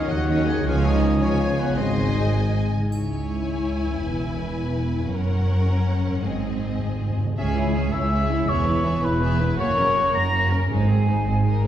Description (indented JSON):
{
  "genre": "cinematic, heroic adventure film score",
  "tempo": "108 BPM (dotted quarters)",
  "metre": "6/8",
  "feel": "straight",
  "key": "unclear",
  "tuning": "A4 = 440 Hz",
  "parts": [
    { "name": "warm symphonic violin section", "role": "melody", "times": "0.0-11.7 s", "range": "Ab4 to Ab5", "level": "-36 LUFS", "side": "left 2 dB", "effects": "none" },
    { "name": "clear oboe", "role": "second line", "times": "0.0-2.3 s", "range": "Cb5 to Ab5", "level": "-33 LUFS", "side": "left 1 dB", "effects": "none" },
    { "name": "hollow concert flute", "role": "second line", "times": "0.0-2.7, 7.4-11.6 s", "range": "F5 to Bb6", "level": "-27 LUFS", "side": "left 2 dB", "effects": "none" },
    { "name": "warm clarinet", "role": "second line", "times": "0.0-2.7 s", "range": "Db5 to Eb5", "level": "-37 LUFS", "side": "left 1 dB", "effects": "none" },
    { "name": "warm symphonic violin section", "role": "second line", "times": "0.0-11.7 s", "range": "C4 to Eb5", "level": "-34 LUFS", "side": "left 2 dB", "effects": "none" },
    { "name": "warm studio viola section", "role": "accompaniment", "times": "0.0-11.7 s", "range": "F3 to Fb4", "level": "-30 LUFS", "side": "left 1 dB", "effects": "none" },
    { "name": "mellow French horn section", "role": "sustained chords", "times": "0.0-2.4 s", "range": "Cb4 to Ab4", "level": "-28 LUFS", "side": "left 2 dB", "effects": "none" },
    { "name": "concert harp", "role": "arpeggios", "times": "0.0-11.7 s", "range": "E2 to Bb5", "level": "-32 LUFS", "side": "left 2 dB", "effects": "none" },
    { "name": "rich symphonic double bass section", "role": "bass", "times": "0.0-11.7 s", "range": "E1 to Eb2", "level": "-25 LUFS", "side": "right 1 dB", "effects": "none" },
    { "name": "warm symphonic cello section", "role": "bass", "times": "0.0-11.7 s", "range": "Db2 to Eb3", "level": "-26 LUFS", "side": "right 1 dB", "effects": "none" },
    { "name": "warm tuba", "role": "bass", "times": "0.0-2.7 s", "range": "Ab1 to Eb2", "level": "-26 LUFS", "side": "right 1 dB", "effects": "none" },
    { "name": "triangle", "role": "percussion", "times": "2.9-3.6 s", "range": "none", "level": "-50 LUFS", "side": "equal", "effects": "none" },
    { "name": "timpani", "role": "percussion", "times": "6.2-7.3, 10.7-11.2 s", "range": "Ab2", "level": "-30 LUFS", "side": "right 1 dB", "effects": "none" },
    { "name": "clear trumpet", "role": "stabs", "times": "7.4-11.6 s", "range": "Ab4 to Bb5", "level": "-29 LUFS", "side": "right 1 dB", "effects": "none" }
  ],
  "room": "wet scoring stage reverb, RT60 1.7 s",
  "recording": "heard from further back in the room",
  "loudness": "-20 LUFS",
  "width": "side -11 dB against mid",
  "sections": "0.0-2.9 A section; 2.9-7.4 B section; 7.4-11.7 C section",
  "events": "timpani fill 6.2-7.4",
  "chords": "0.0 Ebm7; 0.7 Db; 1.8 Ab; 2.9 Dbm; 4.0 E; 5.1 Gb; 6.2 Ab; 7.4 Dbm; 8.5 E; 9.6 Gb; 10.7 Ab"
}